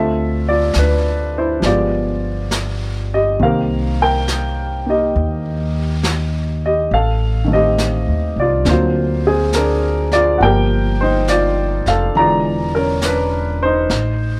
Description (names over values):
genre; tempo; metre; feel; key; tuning
jazz ballad; 69 BPM; 4/4; swing 67% on 8ths; G minor; A4 = 440 Hz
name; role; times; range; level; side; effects
warm grand piano; accompaniment; 0.0-14.4 s; D3 to Bb5; -19 LUFS; equal; none
upright bass; bass; 0.0-14.4 s; E1 to Eb2; -22 LUFS; equal; none
jazz brush drum kit; drums; 0.7-14.4 s; brushed snare drum, hi-hat, snare drum; -28 LUFS; equal; none
room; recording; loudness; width
light reverb; none; -17 LUFS; mono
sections
0.0-14.4 A section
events
none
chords
0.0 Dm7; 1.6 G7b9; 3.4 Cm7; 6.9 Am7b5; 8.7 D7alt; 10.4 Gm9; 12.2 E7b9; 13.9 Adim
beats
0.75 1.63 2.51 | 3.40 4.28 5.16 6.04 | 6.91 7.79 8.66 9.53 | 10.40 11.28 12.15 13.02 | 13.90